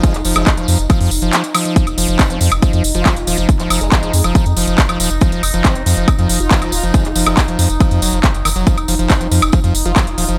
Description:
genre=psychedelic trance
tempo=139 BPM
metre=4/4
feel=straight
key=unclear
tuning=A4 = 439 Hz
part: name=formant-sweep wobble bass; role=second line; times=0.0-10.3 s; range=Ab3 to F4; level=-31 LUFS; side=equal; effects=chorus, sidechain pumping, high-pass filter, delay
part: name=overtone-sweeping drone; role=sustained chords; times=0.0-10.4 s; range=Eb4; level=-26 LUFS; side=equal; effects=chorus, built-in reverb, sidechain pumping
part: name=screaming distorted acid line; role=riff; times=0.0-10.4 s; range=Eb3 to Gb3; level=-24 LUFS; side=equal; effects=distortion, chorus, sidechain pumping, delay
part: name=electronic kick drum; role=drums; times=0.0-10.0 s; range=none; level=-16 LUFS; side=equal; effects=overdrive, studio reverb
part: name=techno drum kit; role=drums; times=0.0-10.4 s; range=handclaps, hi-hat, woodblock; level=-21 LUFS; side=equal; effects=overdrive, studio reverb
part: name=tambourine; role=percussion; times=0.0-10.4 s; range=none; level=-29 LUFS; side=equal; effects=none
part: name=round analog bass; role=bass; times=0.1-10.4 s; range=Eb1 to F2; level=-20 LUFS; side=equal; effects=none
room=digital ambience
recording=none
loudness=-14 LUFS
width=mono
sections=0.0-10.4 A section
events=kick drops out 1.3-1.8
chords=0.0 Ebsus2

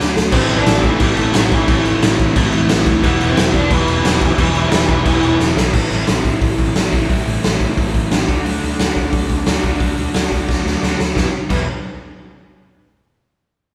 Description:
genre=punk rock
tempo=177 BPM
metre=4/4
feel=straight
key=E minor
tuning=A4 = 436 Hz
part: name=overdriven electric guitar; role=riff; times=0.0-11.6 s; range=A2 to F#4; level=-23 LUFS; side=equal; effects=none
part: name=picked electric bass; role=bass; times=0.0-11.7 s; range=E1 to D2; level=-25 LUFS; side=equal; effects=none
part: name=raw garage drum kit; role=drums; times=0.0-11.6 s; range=crash cymbal, hi-hat, kick drum, snare drum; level=-18 LUFS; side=equal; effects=none
part: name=bluesy overdriven lead guitar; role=melody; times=0.3-5.4 s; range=E3 to D5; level=-23 LUFS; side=equal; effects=distortion
part: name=overdriven electric guitar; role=riff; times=0.3-5.7 s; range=E2 to A3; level=-22 LUFS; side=equal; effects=none
room=light reverb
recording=band playing live in one room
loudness=-16 LUFS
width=mono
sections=0.0-5.7 A section; 5.7-11.2 B section; 11.2-12.5 C section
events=drum fill 0.0-0.3, 5.4-5.7, 10.5-11.2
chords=0.3 Am; 3.0 Em; 5.7 Am; 8.3 D; 11.2 Em

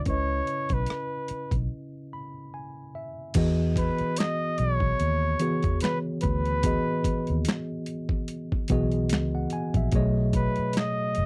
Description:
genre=R&B, neo-soul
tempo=73 BPM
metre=4/4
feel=swing 56% on 16ths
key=E major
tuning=A4 = 440 Hz
part: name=warm flugelhorn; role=melody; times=0.0-11.3 s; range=B4 to D#5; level=-32 LUFS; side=equal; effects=none
part: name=mellow tine electric piano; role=accompaniment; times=0.0-11.3 s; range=B2 to B5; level=-32 LUFS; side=equal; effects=none
part: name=vintage muted fingered electric bass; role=bass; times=0.0-11.3 s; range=F#1 to E2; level=-30 LUFS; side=equal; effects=none
part: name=boom bap sampler-style drum kit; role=drums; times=0.1-11.3 s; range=crash cymbal, finger snaps, hi-hat, kick drum, rim click, snare drum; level=-31 LUFS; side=equal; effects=overdrive
room=little or no reverb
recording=dry, close 1970s-style studio recording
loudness=-27 LUFS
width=mono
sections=0.0-3.4 A section; 3.4-11.3 B section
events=break 1.7-3.4; tine electric piano fill 1.7-3.4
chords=0.1 C#m9; 3.4 Emaj9; 9.9 B13

